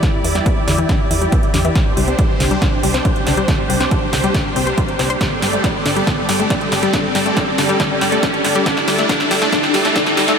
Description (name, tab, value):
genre	uplifting trance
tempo	139 BPM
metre	4/4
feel	straight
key	unclear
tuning	A4 = 438 Hz
part	filtered supersaw swell	sustained chords	0.0-10.4 s	G3 to D5	-20 LUFS	right 1 dB	phaser, sidechain pumping
part	analog pluck	arpeggios	0.0-10.4 s	D3 to C5	-20 LUFS	left 3 dB	chorus, sidechain pumping, ping-pong delay
part	big-room dance drum kit	drums	0.0-10.4 s	hi-hat, snare drum	-22 LUFS	right 1 dB	high-pass filter on snare, sidechain pumping on hats, high-pass filter on hats
part	electronic kick drum	drums	0.0-10.0 s	none	-19 LUFS	equal	none
part	riser	sound effects	2.4-10.4 s	none	-24 LUFS	equal	none
part	solid FM bass	bass	0.2-10.3 s	G1 to E2	-23 LUFS	equal	sidechain pumping
room	wet huge ambient reverb, RT60 7.7 s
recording	dreamy mix soaked in reverb, high-pass filter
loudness	-14 LUFS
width	side -6 dB against mid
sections	0.0-10.4 A section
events	build-up 0.0-10.4; drum fill 0.0-10.4; filter sweep on synth pluck 0.0-10.4; filter sweep 0.0-10.4; riser 2.4-10.4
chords	0.0 Em7; 1.8 Csus2; 5.2 Gsus2; 8.7 Dsus2